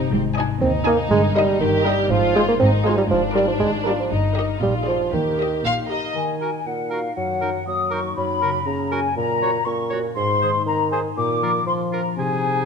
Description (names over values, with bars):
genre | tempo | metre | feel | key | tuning
cinematic, playful, whimsical film cue | 120 BPM | 2/4 | straight | Eb major, Eb minor from 6.2 s | A4 = 441 Hz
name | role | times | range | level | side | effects
rich studio violin section | melody | 0.0-6.2 s | C5 to Ab5 | -28 LUFS | left 4 dB | none
dark studio violin section | second line | 0.0-5.9 s | C4 to G4 | -26 LUFS | left 3 dB | none
dark bassoon | accompaniment | 0.0-12.7 s | Ab2 to C4 | -22 LUFS | right 3 dB | none
dark studio viola section | accompaniment | 0.0-6.1 s | Eb4 to Eb5 | -29 LUFS | right 1 dB | none
concert harp | arpeggios | 0.0-12.7 s | Gb2 to Bb4 | -28 LUFS | left 10 dB | none
warm studio cello section | bass | 0.1-6.0 s | Eb2 to Bb2 | -27 LUFS | right 1 dB | none
warm studio double bass section | bass | 0.1-6.0 s | G1 to Eb2 | -27 LUFS | right 3 dB | none
mellow flute section | second line | 5.7-12.7 s | F5 to Eb6 | -23 LUFS | left 3 dB | none
bright clarinet | second line | 6.4-12.7 s | Eb4 to Ab4 | -37 LUFS | left 1 dB | none
clear cor anglais | second line | 6.4-12.7 s | Ab4 to Db5 | -31 LUFS | right 3 dB | none
room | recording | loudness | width
moderate scoring stage reverb, RT60 1.9 s | none | -18 LUFS | side -6 dB against mid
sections
0.0-6.2 A section; 6.2-12.7 B section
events
none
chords
0.1 Ab; 1.1 Eb/G; 2.1 Fm/Ab; 3.1 Bb7/Ab; 4.1 Eb/G; 4.6 Bb13; 5.1 Eb; 6.2 Ebm; 7.2 Ebm/Gb; 8.2 Gb; 9.2 Gb/Bb; 10.2 Ab; 11.2 Bb